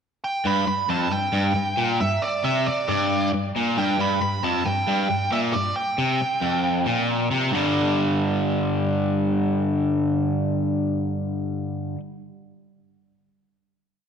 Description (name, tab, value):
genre	rock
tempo	136 BPM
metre	4/4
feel	straight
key	unclear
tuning	A4 = 441 Hz
part	nasal lead guitar with a parked wah	melody	0.2-7.0 s	D5 to B5	-25 LUFS	right 2 dB	overdrive
part	crunchy overdriven guitar	riff	0.5-12.0 s	F2 to G3	-22 LUFS	equal	slapback echo
room	wet lush hall reverb, RT60 1.9 s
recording	big arena sound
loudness	-20 LUFS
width	side -7 dB against mid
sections	0.0-0.4 pickup bar; 0.4-7.5 riff; 7.5-11.1 final chord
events	none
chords	0.4 G5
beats	0.00 | 0.45 0.89 1.33 1.78 | 2.22 2.67 3.11 3.55 | 3.99 4.44 4.88 5.32 | 5.76 6.20 6.64 7.09 | 7.53 7.97 8.41 8.86 | 9.30 9.74 10.19 10.63